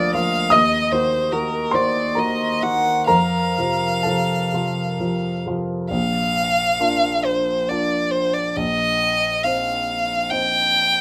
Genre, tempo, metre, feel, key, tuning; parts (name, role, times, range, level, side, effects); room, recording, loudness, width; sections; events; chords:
classical, romantic duo for violin and grand piano; 62-77 BPM; 3/4; rubato; Bb major; A4 = 441 Hz
rich violin; melody; 0.0-11.0 s; Bb4 to G5; -22 LUFS; equal
warm grand piano; accompaniment; 0.0-11.0 s; Bb1 to F6; -24 LUFS; equal
moderate studio reverb, RT60 0.7 s; -20 LUFS; mono
0.0-5.9 A section; 5.9-11.0 B section
0.0 Bb/D; 0.5 Ebm; 3.1 F; 5.9 Bb; 8.6 Cm7/Bb